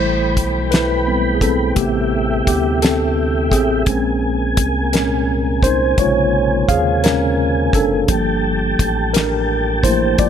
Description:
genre	slow six-eight R&B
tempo	57 BPM (dotted quarters)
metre	6/8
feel	straight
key	A phrygian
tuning	A4 = 440 Hz
part	mellow tine electric piano	accompaniment	0.0-10.3 s	Bb2 to F5	-17 LUFS	equal	medium stereo tremolo
part	tonewheel organ	sustained chords	0.0-10.3 s	A3 to B5	-23 LUFS	right 1 dB	chorus vibrato, slow rotary speaker
part	round analog bass	bass	0.0-10.3 s	F#1 to D#2	-22 LUFS	equal	none
part	damped 70s drum kit	drums	0.4-10.3 s	hi-hat, kick drum, snare drum	-18 LUFS	equal	none
room	light reverb, small room ambience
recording	none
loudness	-14 LUFS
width	side -8 dB against mid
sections	0.0-10.3 A section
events	tine electric piano solo 0.0-10.3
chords	0.0 Am9; 3.9 Bbm9; 8.1 Gm9

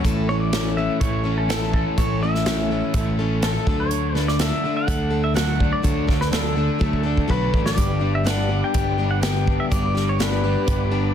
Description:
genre	folk rock and heartland rock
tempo	124 BPM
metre	4/4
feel	straight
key	A mixolydian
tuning	A4 = 441 Hz
part	picked plugged-in steel-string acoustic guitar	accompaniment	0.0-11.1 s	G2 to A4	-26 LUFS	left 6 dB	none
part	crunchy overdriven guitar	riff	0.0-11.1 s	G2 to A4	-28 LUFS	right 2 dB	none
part	picked electric bass	bass	0.0-11.1 s	G1 to D2	-24 LUFS	right 1 dB	none
part	natural country drum kit	drums	0.0-10.8 s	hi-hat, kick drum, snare drum	-24 LUFS	right 1 dB	none
part	pedal steel guitar	melody	0.3-11.1 s	A4 to G5	-27 LUFS	left 1 dB	none
part	tonewheel organ	sustained chords	7.8-11.1 s	G4 to D6	-35 LUFS	equal	chorus vibrato, slow rotary speaker
room	light reverb, small room ambience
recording	dense, heavily limited modern master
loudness	-19 LUFS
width	side -9 dB against mid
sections	0.0-11.1 A section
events	drum fill 6.8-7.8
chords	0.0 A; 3.7 D; 7.8 G

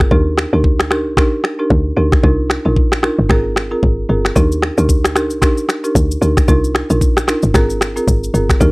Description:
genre	afrobeats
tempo	113 BPM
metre	4/4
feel	swing 58% on 16ths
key	unclear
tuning	A4 = 438 Hz
part	folk marimba with medium mallets	accompaniment	0.0-8.7 s	C4 to Bb4	-18 LUFS	right 1 dB	none
part	woody log drum bass	bass	0.0-8.7 s	G1 to Eb2	-16 LUFS	equal	none
part	afro-pop drum kit	drums	0.0-8.7 s	finger snaps, kick drum, rim click, shaker	-14 LUFS	equal	none
room	little or no reverb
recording	dry, gritty hardware recording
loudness	-12 LUFS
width	side -26 dB against mid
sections	0.0-8.7 A section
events	break 0.0-4.4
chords	0.1 Ebmaj7; 2.2 Cm11; 3.3 Ab69; 4.4 Ebmaj7; 6.5 Cm11; 7.5 Ab69

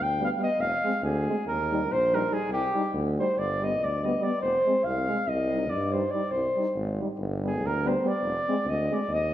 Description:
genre	balkan folk, Balkan brass band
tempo	282 BPM (eighths)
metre	9/8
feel	straight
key	C minor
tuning	A4 = 440 Hz
part	mellow flugelhorn	melody	0.0-9.3 s	G4 to G5	-26 LUFS	equal	none
part	warm tuba	bass	0.0-9.3 s	F1 to G2	-31 LUFS	equal	none
part	clear euphonium	accompaniment	0.2-9.0 s	G3 to Ab3	-34 LUFS	right 4 dB	none
part	mellow French horn	accompaniment	0.2-9.0 s	B3 to Eb4	-34 LUFS	left 4 dB	none
room	wet recital hall reverb, RT60 1.6 s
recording	recorded in a church or concert hall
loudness	-24 LUFS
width	side -12 dB against mid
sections	0.0-9.3 A section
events	flugelhorn solo 0.0-9.3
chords	0.0 G; 0.6 Fm; 1.4 Eb; 2.5 Cm; 3.3 G; 4.4 Fm; 5.3 Cm; 7.2 G; 8.2 Fm

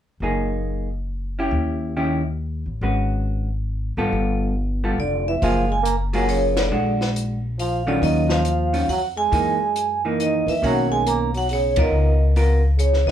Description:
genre	jazz, small-group swing and bop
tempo	138 BPM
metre	3/4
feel	swing 65% on 8ths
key	F# major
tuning	A4 = 441 Hz
part	vintage hollow-body jazz guitar	accompaniment	0.2-12.6 s	D#3 to B4	-24 LUFS	equal	none
part	upright bass	bass	0.2-13.1 s	F1 to C#3	-23 LUFS	left 1 dB	none
part	vibraphone with medium hard mallets	melody	5.0-13.1 s	C#5 to A#5	-23 LUFS	right 3 dB	none
part	clear trombone	second line	5.0-13.1 s	C#3 to A#3	-26 LUFS	right 2 dB	none
part	compact cocktail drum kit	drums	5.4-13.1 s	hi-hat, kick drum, ride cymbal, snare drum	-28 LUFS	left 1 dB	none
room	wet studio ambience, RT60 0.5 s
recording	heard from further back in the room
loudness	-19 LUFS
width	side -10 dB against mid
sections	0.2-5.4 A section; 5.4-13.1 B section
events	band accent 6.5, 11.7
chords	0.2 F#69; 1.5 D#7b9; 2.8 G#m7; 4.1 G9; 5.4 F#maj9; 6.7 A#7b13; 8.0 D#m9; 9.3 F#13; 10.6 Bmaj9; 11.9 C#6

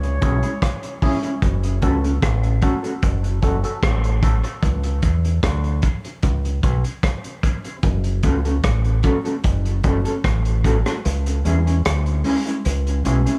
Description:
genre	dub reggae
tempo	75 BPM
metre	4/4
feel	straight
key	F# minor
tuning	A4 = 440 Hz
part	warm flugelhorn	melody	0.0-1.0 s	C#5	-35 LUFS	equal	tape echo
part	deep dub fingered electric bass	bass	0.0-13.3 s	F#1 to E2	-22 LUFS	equal	none
part	crunchy breakbeat drum kit	drums	0.0-13.4 s	hi-hat, kick drum, rim click	-24 LUFS	equal	none
part	mellow electric guitar	accompaniment	0.2-13.3 s	G#3 to A4	-28 LUFS	equal	lush chorus, high-pass filter, tape echo
part	percussive organ stab	stabs	0.2-5.2 s	C#4 to A4	-32 LUFS	equal	chorus, high-pass filter, tape echo
room	small room ambience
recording	studio ambience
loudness	-20 LUFS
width	mono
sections	0.0-13.4 A section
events	filter sweep 1.4-7.8; kick muted 11.0-13.4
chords	0.0 C#m; 1.4 F#m; 4.6 C#m; 7.8 F#m; 11.0 C#m

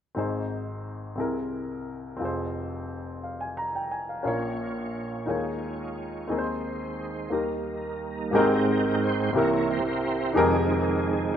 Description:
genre	slow gospel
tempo	59 BPM (dotted quarters)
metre	6/8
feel	straight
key	Ab major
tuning	A4 = 440 Hz
part	warm baby grand piano	accompaniment	0.1-11.4 s	F1 to Bb5	-27 LUFS	left 2 dB	none
part	tonewheel organ	sustained chords	4.2-11.4 s	F2 to G5	-28 LUFS	right 4 dB	slow rotary speaker, chorus vibrato
room	moderate lush hall reverb, RT60 3.1 s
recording	rough home demo mix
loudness	-25 LUFS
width	side -9 dB against mid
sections	0.2-8.3 A section; 8.3-11.4 B section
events	tonewheel organ solo 8.3-11.4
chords	0.2 Ab; 1.2 C7b13; 2.2 Fm; 4.3 Bbm; 5.3 Eb9sus4; 6.3 Ab/Eb; 7.3 Eb; 8.3 Abmaj9; 9.3 C7; 10.4 Fm11

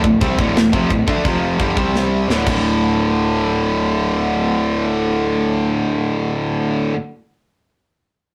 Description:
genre	heavy metal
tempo	172 BPM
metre	4/4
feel	straight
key	D minor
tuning	A4 = 442 Hz
part	heavy high-gain guitar	riff	0.0-6.9 s	D2 to D4	-22 LUFS	equal	distortion
part	tight distorted guitar	riff	0.0-6.9 s	D2 to D4	-21 LUFS	equal	distortion
part	fuzz picked electric bass	bass	0.0-6.9 s	D1 to D2	-27 LUFS	equal	overdrive
part	tight metal drum kit	drums	0.0-2.5 s	china cymbal, crash cymbal, kick drum, snare drum	-23 LUFS	equal	none
room	wet small room reverb, RT60 0.5 s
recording	rough rehearsal-room recording, tube saturation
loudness	-18 LUFS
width	mono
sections	0.0-2.6 A section; 2.6-5.4 B section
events	drum fill 1.9-2.6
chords	0.0 Dm; 1.3 F5; 1.6 G5; 1.8 C5; 2.3 D5

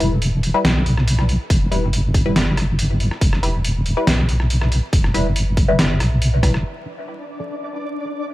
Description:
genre	deep dubstep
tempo	140 BPM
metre	4/4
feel	half-time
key	unclear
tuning	A4 = 436 Hz
part	filtered dub chord stab	stabs	0.0-7.5 s	F3 to B4	-25 LUFS	left 2 dB	phaser, cassette tape, dub echo
part	deep soft wobble bass	bass	0.0-6.6 s	E1 to B1	-18 LUFS	equal	chorus
part	trip hop sampler-style drum kit	drums	0.0-6.6 s	hi-hat, rim click, snare drum	-22 LUFS	equal	low-pass filter on hats, studio ambience, low-pass filter on snare
part	electronic kick drum	drums	1.5-6.5 s	none	-18 LUFS	equal	studio ambience
part	flickering grainy texture	texture	7.0-8.3 s	D4 to D5	-27 LUFS	left 1 dB	built-in reverb
room	digital ambience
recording	vinyl crackle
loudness	-16 LUFS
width	side -17 dB against mid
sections	0.0-6.6 A section; 6.6-8.3 B section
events	none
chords	0.0 Em; 6.6 Dm

